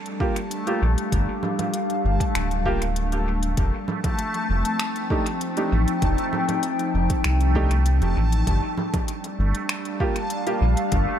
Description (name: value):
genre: ambient dub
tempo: 98 BPM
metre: 4/4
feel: straight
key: unclear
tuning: A4 = 440 Hz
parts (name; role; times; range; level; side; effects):
- warbly tape-like pad; sustained chords; 0.0-11.2 s; F3 to A5; -27 LUFS; left 1 dB; chorus, built-in reverb
- backwards swelling texture; texture; 0.0-11.2 s; A3 to A5; -30 LUFS; left 1 dB; built-in reverb
- organic electronic drum kit; drums; 0.1-11.0 s; congas, finger snaps, hi-hat; -32 LUFS; right 2 dB; overdrive, small room ambience, dub echo
- warm upright piano; stabs; 0.2-10.6 s; A3 to G4; -31 LUFS; right 2 dB; dub echo
- electronic kick drum; drums; 0.2-11.0 s; none; -26 LUFS; equal; small room ambience
- round analog bass; bass; 0.8-11.1 s; D1 to C2; -21 LUFS; equal; none
room: light reverb, digital ambience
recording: none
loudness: -21 LUFS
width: side -10 dB against mid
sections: 0.0-11.2 A section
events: none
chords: 0.0 Gm7; 3.6 F9; 8.5 Gm7